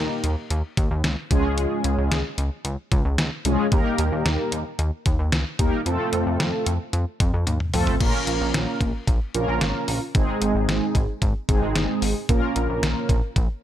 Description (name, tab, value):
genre	synth-pop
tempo	112 BPM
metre	4/4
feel	straight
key	Bb dorian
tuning	A4 = 439 Hz
part	mellow synth brass	accompaniment	0.0-13.2 s	Ab3 to Bb4	-24 LUFS	equal	chorus
part	chorused synth bass	bass	0.0-13.5 s	G1 to F2	-24 LUFS	equal	none
part	detuned 8-bit digital drum machine	drums	0.2-13.5 s	crash cymbal, hi-hat, kick drum, snare drum, toms	-23 LUFS	equal	none
room	little or no reverb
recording	none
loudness	-20 LUFS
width	side -11 dB against mid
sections	0.0-8.0 A section; 8.0-13.6 B section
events	drum fill 7.5-8.0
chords	0.0 Eb; 1.3 Db; 3.7 Eb; 5.9 F; 8.0 Bbm; 10.1 Ab; 12.3 Bbm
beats	0.51 1.04 | 1.58 2.11 2.65 3.18 | 3.72 4.25 4.79 5.33 | 5.86 6.40 6.93 7.47 | 8.01 8.54 9.08 9.61 | 10.15 10.68 11.22 11.76 | 12.29 12.83 13.36